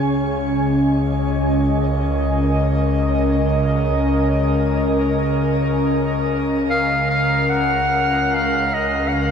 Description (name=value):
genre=ambient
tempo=free time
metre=none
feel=none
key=Db major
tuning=A4 = 442 Hz
part: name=airy breathy pad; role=sustained chords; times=0.0-9.3 s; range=Db3 to Ab5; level=-18 LUFS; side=equal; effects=chorus
part: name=clear chamber double bass section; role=bass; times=0.0-9.3 s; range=Db2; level=-24 LUFS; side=right 1 dB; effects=none
part: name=analog drone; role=drone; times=4.3-9.3 s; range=Db3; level=-30 LUFS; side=equal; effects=none
part: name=mellow clarinet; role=melody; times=6.7-9.3 s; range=Eb5 to Gb5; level=-18 LUFS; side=equal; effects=ping-pong delay
room=wet shimmer reverb, RT60 8.2 s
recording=none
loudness=-16 LUFS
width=side -7 dB against mid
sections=0.0-9.3 A section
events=none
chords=0.0 Db5